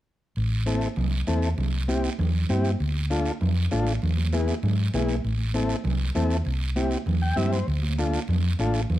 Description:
latin, cumbia; 197 BPM; 4/4; straight; A minor; A4 = 437 Hz
hollow-body short-scale fingered electric bass; bass; 0.4-9.0 s; A1 to G#2; -24 LUFS; equal
guiro; percussion; 0.4-9.0 s; -38 LUFS; right 6 dB
combo organ; accompaniment; 0.7-8.8 s; B3 to G5; -28 LUFS; left 2 dB
congas; percussion; 0.7-9.0 s; -32 LUFS; right 4 dB
light reverb; dark, warm production; -22 LUFS; side -14 dB against mid
0.4-9.0 A section
transistor combo organ fill 7.1-7.7
0.4 Am; 1.6 C; 2.8 Dm; 4.0 E; 5.2 Am; 6.5 C; 7.7 Dm
| 0.36 0.67 0.97 1.28 | 1.58 1.89 2.19 2.50 | 2.80 3.11 3.41 3.72 | 4.02 4.33 4.63 4.94 | 5.24 5.55 5.85 6.16 | 6.46 6.77 7.07 7.38 | 7.68 7.99 8.29 8.60 | 8.90

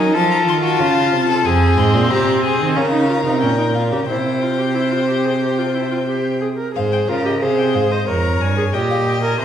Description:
classical, baroque-style fugue for string quartet; 91 BPM; 4/4; straight; F minor; A4 = 440 Hz
rich violin; melody; 0.0-9.4 s; Eb5 to C6; -24 LUFS; left 9 dB
warm violin; second line; 0.0-9.4 s; F4 to E5; -21 LUFS; left 3 dB
clear viola; accompaniment; 0.0-9.4 s; C4 to C5; -20 LUFS; right 1 dB
rich cello; bass; 0.0-9.4 s; F2 to Gb3; -19 LUFS; right 3 dB
wet recital hall reverb, RT60 1.5 s; heard from further back in the room; -15 LUFS; side -9 dB against mid
0.0-6.8 A section; 6.8-9.4 B section
0.1 F; 1.5 Fm; 2.8 Bbm; 4.1 C; 6.8 Fm/Ab; 8.1 Gm7b5/F
0.14 0.80 | 1.45 2.10 2.75 3.41 | 4.08 4.75 5.42 6.09 | 6.76 7.42 8.08 8.74 | 9.40

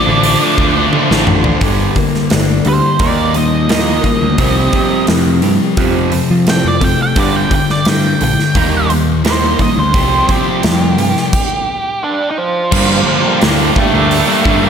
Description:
quiet-loud alternative rock; 86 BPM; 4/4; straight; G minor; A4 = 440 Hz
octave-fuzz lead guitar; melody; 0.0-14.7 s; F3 to D6; -17 LUFS; right 3 dB; distortion
mellow tonewheel organ; sustained chords; 0.0-1.6, 12.7-14.7 s; F4 to A5; -26 LUFS; equal
scooped high-gain guitar; riff; 0.0-1.3, 12.7-14.7 s; G2 to D4; -19 LUFS; left 2 dB; distortion
thick fuzz guitar; riff; 0.0-14.7 s; F2 to D4; -17 LUFS; left 10 dB; distortion
raw garage guitar; riff; 0.1-14.7 s; F2 to Eb4; -19 LUFS; right 11 dB; overdrive, slapback echo
growling picked electric bass; bass; 0.1-14.7 s; G1 to F3; -16 LUFS; equal; overdrive
big rock drum kit; drums; 0.2-14.6 s; crash cymbal, hi-hat, kick drum, snare drum, toms; -16 LUFS; equal
electric guitar through a small old amp; arpeggios; 1.6-7.2 s; G2 to G4; -20 LUFS; right 1 dB; phaser, slapback echo
moderate lush hall reverb, RT60 2.6 s; big arena sound; -10 LUFS; side -7 dB against mid
0.0-1.6 A section; 1.6-12.7 B section; 12.7-14.7 A section
drum fill 0.9-1.6; lead electric guitar solo 1.6-12.7; stop 11.3-12.7
0.0 Dm7; 1.6 Gm; 3.0 Ebadd9; 4.4 Csus4; 5.8 F; 7.2 G5; 8.6 Eb; 9.9 Csus4; 11.3 N.C.; 12.0 Dm; 12.7 Gm7
0.23 0.92 | 1.61 2.31 3.00 3.69 | 4.39 5.08 5.77 6.47 | 7.16 7.86 8.55 9.25 | 9.94 10.64 11.33 12.03 | 12.72 13.41 14.11

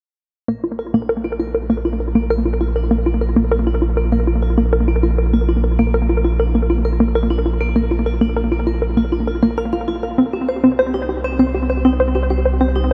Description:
ambient; 99 BPM; 4/4; straight; A4 = 439 Hz
vibraphone with hard mallets; arpeggios; 0.5-12.9 s; Bb3 to F5; -34 LUFS; equal; analog delay, shimmer reverb
hollow square pluck; riff; 0.5-12.9 s; Bb3 to C5; -20 LUFS; equal; chorus, analog delay, shimmer reverb
warm sub bass; bass; 0.5-12.9 s; Bb1 to C2; -22 LUFS; equal
moderate huge ambient reverb, RT60 9.0 s; dreamy mix soaked in reverb; -18 LUFS; mono
0.5-12.9 A section
fade-in on vibraphone 0.5-12.9; filter sweep on synth arpeggio sound 0.5-12.9
0.5 Bb; 10.2 Cm
| 0.49 1.09 1.70 2.30 | 2.91 3.52 4.12 4.73 | 5.33 5.94 6.55 7.15 | 7.76 8.37 8.97 9.58 | 10.18 10.79 11.39 12.00 | 12.61

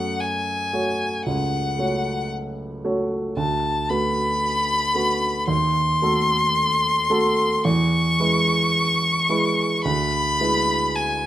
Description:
classical, romantic duo for violin and grand piano; 56 BPM; 4/4; rubato; A4 = 442 Hz
rich violin; melody; 0.0-11.3 s; F#5 to C#6; -21 LUFS; left 2 dB
warm grand piano; accompaniment; 0.0-11.3 s; C#2 to C#5; -23 LUFS; right 2 dB
light reverb; close, detailed microphones; -19 LUFS; side -13 dB against mid
0.0-11.3 A section
0.0 F#m; 3.4 Bm7/D; 5.5 D#dim7; 7.6 E; 9.8 E7/D
0.21 1.25 2.31 | 3.38 4.42 5.49 6.56 | 7.65 8.74 9.85 10.95

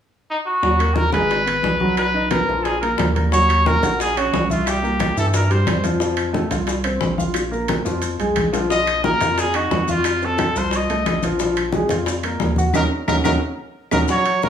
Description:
latin, salsa; 178 BPM; 4/4; straight; Eb minor; A4 = 439 Hz
bright trumpet; melody; 0.3-5.8, 8.7-14.5 s; Eb4 to Eb5; -20 LUFS; equal; plate reverb
warm concert grand piano; accompaniment; 0.6-14.5 s; E3 to Bb5; -23 LUFS; equal
saturated sub bass; bass; 0.6-14.0 s; Ab1 to G2; -23 LUFS; equal
bongos; percussion; 0.6-14.5 s; -28 LUFS; left 6 dB
congas; percussion; 0.6-14.5 s; -25 LUFS; left 2 dB
claves; percussion; 0.8-14.0 s; -33 LUFS; left 6 dB
timbales; percussion; 0.8-14.4 s; -28 LUFS; right 6 dB
maracas; percussion; 3.3-14.5 s; -34 LUFS; left 4 dB
moderate large studio reverb, RT60 0.9 s; studio reverb; -17 LUFS; side -8 dB against mid
0.6-3.3 A section; 3.3-14.1 B section
drum fill 7.4-8.7, 12.7-14.1; band accent 12.7-14.1
0.0 N.C.; 0.6 Ebm; 1.3 Abm; 2.0 B; 2.6 Bb5; 3.3 Ebm7; 4.7 C7; 6.0 F; 7.4 Bb5; 8.7 Bbsus4; 10.0 F7; 11.4 Bb5; 12.7 Ebm7
0.29 | 0.63 0.96 1.30 1.64 | 1.98 2.31 2.65 2.98 | 3.32 3.66 3.99 4.33 | 4.67 5.00 5.34 5.67 | 6.01 6.35 6.68 7.02 | 7.36 7.69 8.03 8.37 | 8.70 9.04 9.38 9.71 | 10.05 10.39 10.72 11.06 | 11.40 11.73 12.07 12.41 | 12.74 13.08 13.42 13.75 | 14.09 14.43

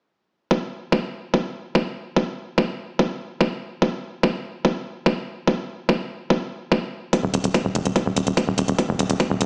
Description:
psychedelic trance; 145 BPM; 4/4; straight; A4 = 440 Hz
electronic kick drum; drums; 0.5-9.3 s; -20 LUFS; equal; high-pass filter on kick
electronic hi-hat; drums; 7.1-9.5 s; -32 LUFS; equal
tight sequencer bass; bass; 7.2-9.5 s; Eb1 to F1; -24 LUFS; equal
digital ambience; played on a big sound system in a bare room, stone room reverb, small speaker sound; -24 LUFS; mono
0.5-9.5 A section
| 0.51 0.92 1.34 1.75 | 2.17 2.58 2.99 3.41 | 3.82 4.23 4.65 5.06 | 5.47 5.89 6.30 6.72 | 7.13 7.54 7.96 8.37 | 8.79 9.20

